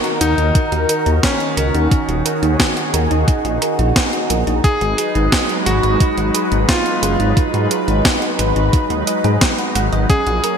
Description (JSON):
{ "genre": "synthwave", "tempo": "88 BPM", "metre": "4/4", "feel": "straight", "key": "unclear", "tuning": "A4 = 440 Hz", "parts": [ { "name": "bright electric grand piano", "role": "melody", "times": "0.0-10.6 s", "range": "Db4 to Ab4", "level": "-22 LUFS", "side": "left 1 dB", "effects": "vintage 12-bit sampler grit, ping-pong delay" }, { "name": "lush unison pad", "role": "sustained chords", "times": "0.0-10.6 s", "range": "Eb3 to Cb5", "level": "-20 LUFS", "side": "equal", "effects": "chorus, phaser, sidechain pumping" }, { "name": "thumb-piano-like synth pluck", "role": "arpeggios", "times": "0.0-10.6 s", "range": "Db4 to Gb5", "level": "-24 LUFS", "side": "right 2 dB", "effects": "chorus, ping-pong delay" }, { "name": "clean 12-bit digital drum machine", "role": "drums", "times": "0.0-10.6 s", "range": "hi-hat, snare drum", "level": "-20 LUFS", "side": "right 1 dB", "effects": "overdrive, gated reverb" }, { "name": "wide detuned saw bass", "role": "bass", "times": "0.2-10.4 s", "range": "Eb1 to Ab2", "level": "-18 LUFS", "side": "equal", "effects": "chorus, sidechain pumping" }, { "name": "electronic kick drum", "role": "drums", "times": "0.6-10.2 s", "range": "none", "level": "-16 LUFS", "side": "equal", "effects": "overdrive" } ], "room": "moderate lush hall reverb, RT60 2.5 s", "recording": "bright 1980s-style digital production", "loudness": "-14 LUFS", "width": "side -7 dB against mid", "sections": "0.0-10.6 A section", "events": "none", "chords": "0.0 Ebm; 4.6 Abm7" }